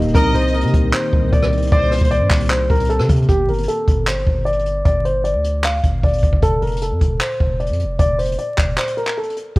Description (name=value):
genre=hip hop, trap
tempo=153 BPM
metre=4/4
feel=half-time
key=G minor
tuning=A4 = 440 Hz
part: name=dark concert grand piano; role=melody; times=0.0-9.6 s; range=G4 to F5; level=-20 LUFS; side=equal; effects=low-pass filter
part: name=felt-muted upright piano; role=accompaniment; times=0.0-3.3 s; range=Bb3 to Bb4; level=-25 LUFS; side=left 1 dB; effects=low-pass filter
part: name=glassy FM pad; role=sustained chords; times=0.0-3.3 s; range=Eb3 to G4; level=-27 LUFS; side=left 1 dB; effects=ensemble chorus, built-in reverb
part: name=long sustained 808-style bass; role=bass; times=0.0-9.6 s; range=Eb1 to C3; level=-20 LUFS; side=equal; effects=none
part: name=jazz brush drum kit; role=drums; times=0.0-9.6 s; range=handclaps, hi-hat, kick drum, rim click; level=-18 LUFS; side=equal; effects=none
part: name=warm studio violin section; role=second line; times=0.1-2.1 s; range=C5 to Eb5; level=-29 LUFS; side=equal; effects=tape echo
room=studio reverb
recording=worn, warbling old tape, cassette tape, vinyl crackle, warbly pitch drift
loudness=-15 LUFS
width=side -21 dB against mid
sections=0.0-3.3 A section; 3.3-9.6 B section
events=filter sweep 3.3-9.6; break 8.8-9.6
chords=0.1 Cm7; 3.3 G5; 6.4 F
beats=| 0.15 0.54 0.93 1.32 | 1.72 2.11 2.50 2.89 | 3.29 3.68 4.07 4.46 | 4.85 5.25 5.64 6.03 | 6.42 6.82 7.21 7.60 | 7.99 8.38 8.78 9.17 | 9.56